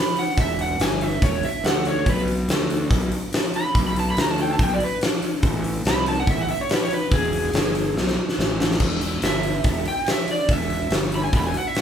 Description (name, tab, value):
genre	blues rock power trio and southern rock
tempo	142 BPM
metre	4/4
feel	straight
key	unclear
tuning	A4 = 440 Hz
part	overdriven slide guitar	melody	0.0-11.8 s	G#4 to B5	-25 LUFS	right 2 dB	none
part	big rock drum kit	drums	0.2-11.8 s	crash cymbal, hi-hat, kick drum, snare drum	-22 LUFS	equal	none
part	fuzz fingered electric bass	bass	0.4-11.5 s	E1 to D2	-26 LUFS	equal	overdrive
room	light reverb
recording	band playing live in one room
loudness	-19 LUFS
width	side -8 dB against mid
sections	0.0-8.8 A section; 8.8-11.8 A section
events	electric slide guitar solo 0.0-11.8; drum fill 8.0-8.8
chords	0.0 Em9; 2.1 Bm; 5.4 Amadd9; 7.1 E; 8.0 Asus2; 8.8 Em